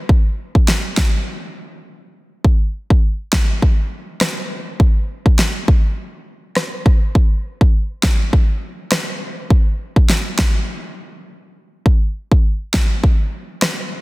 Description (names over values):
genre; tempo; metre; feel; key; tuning
dancehall; 102 BPM; 4/4; swing 56% on 16ths; none; none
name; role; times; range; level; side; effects
pop drum kit; drums; 0.1-13.8 s; kick drum, rim click, snare drum; -14 LUFS; equal; none
room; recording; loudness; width
light reverb; dense, heavily limited modern master; -15 LUFS; side -21 dB against mid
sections
0.0-11.9 A section; 11.9-14.0 B section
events
break 1.9-2.4; drums muted 11.3-11.9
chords
none